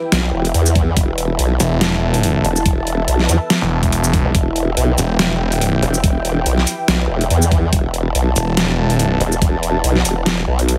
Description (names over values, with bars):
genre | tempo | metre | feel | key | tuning
heavy wobble dubstep | 142 BPM | 4/4 | swing 55% on 16ths, half-time | E minor | A4 = 440 Hz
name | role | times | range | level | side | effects
lush unison pad | sustained chords | 0.0-10.8 s | E4 to A5 | -27 LUFS | equal | chorus, phaser, sidechain pumping
formant-sweep wobble bass | bass | 0.1-10.8 s | E1 to E2 | -19 LUFS | equal | chorus, overdrive
dubstep drum kit | drums | 0.1-10.8 s | hi-hat, shaker, snare drum | -22 LUFS | equal | overdrive
electronic kick drum | drums | 0.8-9.5 s | none | -18 LUFS | equal | overdrive
snarling distorted saw bass | bass | 1.6-5.8, 8.4-9.2 s | E1 | -19 LUFS | equal | distortion, overdrive
room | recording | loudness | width
little or no reverb | heavily compressed radio sound | -16 LUFS | mono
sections
0.0-10.8 A section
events
none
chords
0.0 Em